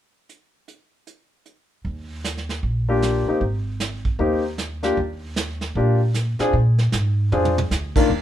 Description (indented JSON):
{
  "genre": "jazz, small-group swing and bop",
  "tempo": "154 BPM",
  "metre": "4/4",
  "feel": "swing 64% on 8ths",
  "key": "Eb major",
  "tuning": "A4 = 436 Hz",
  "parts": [
    { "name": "vintage brush drum kit", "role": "drums", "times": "0.3-8.2 s", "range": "brushed snare drum, crash cymbal, hi-hat, kick drum, snare drum, toms", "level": "-25 LUFS", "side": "right 2 dB", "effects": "none" },
    { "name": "upright bass", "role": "bass", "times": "1.8-8.2 s", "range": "Ab1 to Bb2", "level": "-22 LUFS", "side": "equal", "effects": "none" },
    { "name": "clear concert grand piano", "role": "accompaniment", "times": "2.9-8.1 s", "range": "Eb3 to Bb4", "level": "-21 LUFS", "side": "left 3 dB", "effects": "none" }
  ],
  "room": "moderate studio reverb, RT60 0.7 s",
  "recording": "minimal, uncompressed stereo recording",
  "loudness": "-19 LUFS",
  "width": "side -11 dB against mid",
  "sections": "0.3-1.9 A section; 1.9-8.1 B section",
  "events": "drum fill 7.3-7.7",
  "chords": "0.3 N.C.; 1.9 Ebmaj7; 3.4 Abmaj7; 5.0 Ebmaj7; 6.5 Bb7",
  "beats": "| 0.29 0.68 1.07 1.46 | 1.85 2.24 2.63 3.02 | 3.42 3.81 4.20 4.59 | 4.98 5.37 5.76 6.15 | 6.54 6.93 7.32 7.71 | 8.10"
}